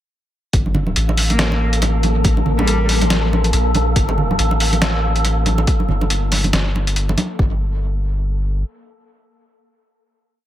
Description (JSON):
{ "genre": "deep dubstep", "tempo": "140 BPM", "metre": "4/4", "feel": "swing 59% on 16ths, half-time", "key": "G minor", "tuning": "A4 = 440 Hz", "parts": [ { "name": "soft dub sub bass", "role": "bass", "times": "0.5-8.6 s", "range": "G1 to Bb1", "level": "-18 LUFS", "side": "equal", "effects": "none" }, { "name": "electronic kick drum", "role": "drums", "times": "0.5-7.5 s", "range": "none", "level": "-18 LUFS", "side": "equal", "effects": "overdrive" }, { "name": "trip hop sampler-style drum kit", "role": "drums", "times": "0.5-7.3 s", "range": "hi-hat, snare drum", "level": "-21 LUFS", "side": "equal", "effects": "overdrive" }, { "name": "wind-like tuned noise texture", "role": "texture", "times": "0.9-7.4 s", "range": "Bb3 to A4", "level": "-24 LUFS", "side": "equal", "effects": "built-in reverb" }, { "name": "congas", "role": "percussion", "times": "0.7-7.3 s", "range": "none", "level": "-24 LUFS", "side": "right 2 dB", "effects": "dub echo" }, { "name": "dark cello", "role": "melody", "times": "1.3-3.3 s", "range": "F3 to Bb3", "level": "-26 LUFS", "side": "equal", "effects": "dub echo" } ], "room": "light reverb", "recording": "echo-heavy mix", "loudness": "-15 LUFS", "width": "side -12 dB against mid", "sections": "0.5-7.4 drop; 7.4-10.5 final note", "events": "drop 0.5-7.4", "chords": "0.5 Gmadd9; 2.2 Gmadd9/A (rootless); 4.0 Gmadd9; 7.4 N.C.", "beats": "| 0.53 0.96 1.39 1.82 | 2.25 2.68 3.10 3.53 | 3.96 4.39 4.82 5.25 | 5.68 6.11 6.53 6.96 | 7.39 7.82 8.25" }